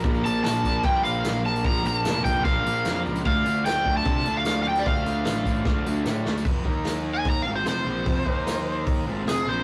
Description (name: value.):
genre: garage rock duo or trio.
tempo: 150 BPM.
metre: 4/4.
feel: straight.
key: unclear.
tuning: A4 = 439 Hz.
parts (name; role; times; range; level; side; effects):
combo organ; sustained chords; 0.0-9.6 s; Bb3 to Bb4; -36 LUFS; equal; none.
thick fuzz guitar; riff; 0.0-9.6 s; F2 to Eb4; -32 LUFS; equal; distortion.
fuzz picked electric bass; bass; 0.0-9.6 s; F1 to C3; -32 LUFS; equal; overdrive.
vintage drum kit; drums; 0.0-9.4 s; crash cymbal, hi-hat, kick drum, snare drum; -30 LUFS; equal; none.
tambourine; percussion; 0.1-9.4 s; none; -47 LUFS; equal; none.
overdriven slide guitar; melody; 0.3-9.6 s; Ab4 to Bb5; -28 LUFS; equal; none.
room: moderate stone room reverb, RT60 1.3 s.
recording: rough rehearsal-room recording, warm saturation.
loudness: -24 LUFS.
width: mono.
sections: 0.0-6.5 A section; 6.5-9.6 B section.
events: drum fill 5.7-6.5; electric slide guitar solo 6.5-9.6.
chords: 0.0 Bb; 3.3 Dm; 6.5 F5; 6.7 Eb5; 7.5 F; 8.3 Eb5; 9.1 F.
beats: | 0.04 0.45 0.85 1.25 | 1.65 2.05 2.45 2.85 | 3.25 3.65 4.05 4.45 | 4.85 5.25 5.66 6.05 | 6.46 6.86 7.26 7.66 | 8.06 8.46 8.87 9.27.